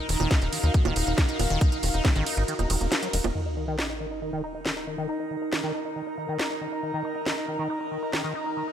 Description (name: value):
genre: psychedelic trance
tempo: 138 BPM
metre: 4/4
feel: straight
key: Eb minor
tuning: A4 = 441 Hz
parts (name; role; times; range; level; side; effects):
- evolving wavetable pad; sustained chords; 0.0-8.7 s; Eb4 to Bb4; -36 LUFS; right 3 dB; phaser, built-in reverb, sidechain pumping
- liquid acid bass; riff; 0.0-8.7 s; Eb3 to Eb4; -33 LUFS; moving between left 5 dB and right 4 dB; chorus, auto-pan, sidechain pumping, dub echo
- airy breathy pad; texture; 0.0-8.7 s; Eb4 to Bb5; -33 LUFS; equal; chorus, sidechain pumping
- tight sequencer bass; bass; 0.1-3.3 s; Eb1 to Eb2; -26 LUFS; equal; tube saturation
- garage drum kit; drums; 0.1-8.2 s; bongos, hi-hat, ride cymbal, snare drum; -30 LUFS; right 1 dB; none
- electronic kick drum; drums; 0.3-2.1 s; none; -23 LUFS; equal; none
- sub drop; sound effects; 3.4-5.1 s; none; -35 LUFS; equal; none
room: light reverb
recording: none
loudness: -24 LUFS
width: side -10 dB against mid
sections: 0.0-3.4 A section; 3.4-8.7 B section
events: drop 0.0-3.4; break 2.5-3.4; impact 3.4-5.1; filter sweep on acid bass 3.4-8.7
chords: 0.0 Eb5